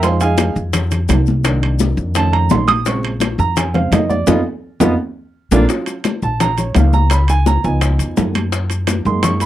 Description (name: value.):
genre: Afro-Cuban jazz.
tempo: 170 BPM.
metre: 4/4.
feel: straight.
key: unclear.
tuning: A4 = 437 Hz.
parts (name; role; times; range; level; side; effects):
dark upright piano; accompaniment; 0.0-9.5 s; Db3 to Eb6; -18 LUFS; right 3 dB; none.
upright bass; bass; 0.0-9.5 s; Bb1 to Gb2; -16 LUFS; equal; none.
bongos; percussion; 0.0-9.5 s; none; -23 LUFS; left 9 dB; none.
congas; percussion; 0.0-9.5 s; none; -22 LUFS; left 2 dB; none.
maracas; percussion; 0.0-9.5 s; none; -30 LUFS; left 21 dB; none.
timbales; percussion; 0.0-9.5 s; none; -22 LUFS; right 6 dB; none.
room: little or no reverb.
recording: dry, close 1970s-style studio recording.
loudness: -13 LUFS.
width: side -13 dB against mid.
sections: 0.0-5.7 A section; 5.7-9.5 A section.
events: upright piano solo 0.0-9.5; band accent 4.3-5.7; drum fill 4.8-5.7.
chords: 0.0 Fm7; 1.5 Cm7; 2.2 F7b13; 2.9 Bbm9; 4.3 Ebsus2/F; 5.0 Bb; 5.7 Bbmmaj7; 7.1 Db7; 8.5 Gb69.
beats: | 0.04 0.39 0.74 1.10 | 1.45 1.81 2.16 2.51 | 2.87 3.22 3.58 3.93 | 4.28 4.64 4.99 5.34 | 5.70 6.05 6.41 6.76 | 7.12 7.47 7.82 8.18 | 8.53 8.88 9.24.